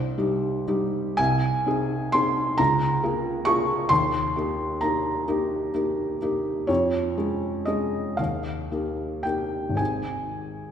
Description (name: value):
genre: classical, romantic nocturne for solo piano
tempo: 36-46 BPM (dotted quarters)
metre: 6/8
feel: rubato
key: unclear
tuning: A4 = 439 Hz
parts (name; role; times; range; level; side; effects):
- felt-muted upright piano; solo; 0.0-10.7 s; Ab1 to Db6; -23 LUFS; equal; none
room: wet scoring stage reverb, RT60 2.1 s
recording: recorded in a church or concert hall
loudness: -22 LUFS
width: side -8 dB against mid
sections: 0.0-10.7 A section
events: none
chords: 0.0 Cm; 1.2 Ab/C; 2.6 Bbm7/Db; 3.9 Eb; 6.7 Db/F; 8.2 Eb; 9.8 Ab